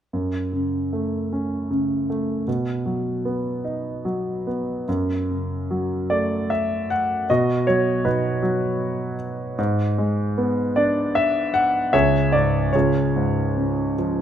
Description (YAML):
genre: classical, lyrical solo piano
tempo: 76 BPM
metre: 3/4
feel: uneven beats, rubato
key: F# minor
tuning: A4 = 440 Hz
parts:
  - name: warm concert grand piano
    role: solo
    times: 0.1-14.2 s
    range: C#2 to F#5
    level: -20 LUFS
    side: equal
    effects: none
room: moderate scoring stage reverb, RT60 1.9 s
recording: close, detailed microphones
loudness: -20 LUFS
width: side -9 dB against mid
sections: 0.1-4.9 A section; 4.9-14.2 B section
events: none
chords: 0.1 F#m; 2.5 B; 4.9 F#m; 7.3 B; 9.6 G#dim; 11.9 C#5; 12.7 C#